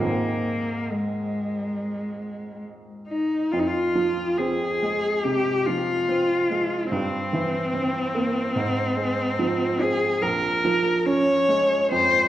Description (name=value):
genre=classical, romantic duo for cello and grand piano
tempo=71 BPM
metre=4/4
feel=rubato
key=Ab major, F minor from 3.5 s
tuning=A4 = 441 Hz
part: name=clear cello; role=melody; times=0.0-12.3 s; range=Ab3 to Db5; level=-23 LUFS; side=left 1 dB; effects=none
part: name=bright baby grand piano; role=accompaniment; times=0.0-12.3 s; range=Bb1 to Db4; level=-26 LUFS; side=right 2 dB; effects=none
room=wet recital hall reverb, RT60 1.6 s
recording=worn, warbling old tape, cassette tape, warbly pitch drift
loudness=-21 LUFS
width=side -13 dB against mid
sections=0.0-3.5 A section; 3.5-12.3 B section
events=none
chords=0.0 Ab; 3.5 Fm; 6.9 C7/G; 8.6 Fm/Ab; 10.2 Bbm7